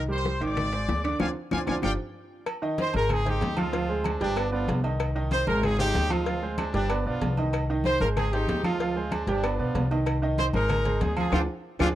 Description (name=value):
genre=latin, salsa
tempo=190 BPM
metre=4/4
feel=straight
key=C minor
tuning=A4 = 441 Hz
part: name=clear grand piano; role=accompaniment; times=0.0-11.9 s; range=D3 to G5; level=-30 LUFS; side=right 3 dB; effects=none
part: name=upright bass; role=bass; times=0.0-11.9 s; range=G1 to D2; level=-29 LUFS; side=left 1 dB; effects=none
part: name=bright trumpet section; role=melody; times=0.1-1.9 s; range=C5 to D6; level=-31 LUFS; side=left 2 dB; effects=none
part: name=congas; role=percussion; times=0.1-11.9 s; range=none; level=-34 LUFS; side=left 2 dB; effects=none
part: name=bongos and cowbell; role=percussion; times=0.3-11.9 s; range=none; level=-36 LUFS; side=left 7 dB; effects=none
part: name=timbales and agogo bells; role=percussion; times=0.3-11.9 s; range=none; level=-36 LUFS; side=right 5 dB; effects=none
part: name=claves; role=percussion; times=0.6-11.9 s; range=none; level=-40 LUFS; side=left 10 dB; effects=none
part: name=clear horn section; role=melody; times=2.8-11.9 s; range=F3 to C5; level=-29 LUFS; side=equal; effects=none
room=small room ambience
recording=dry, close 1970s-style studio recording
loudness=-24 LUFS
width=side -13 dB against mid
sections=0.0-2.5 A section; 2.5-11.9 B section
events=drum fill 1.2-2.5, 11.3-11.9; band accent 1.2-2.5, 11.3-11.9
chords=0.0 Cm7; 0.6 Ab; 1.2 Dm7b5; 1.8 G5; 2.5 Cm; 3.1 Ab; 3.7 Dm7b5; 4.4 G7; 5.0 Cm; 5.6 Ab; 6.3 Dm7b5; 6.9 G7; 7.5 Cm; 8.2 Ab; 8.8 Dm7b5; 9.4 G7; 10.1 Cm; 10.7 Ab; 11.3 Ddim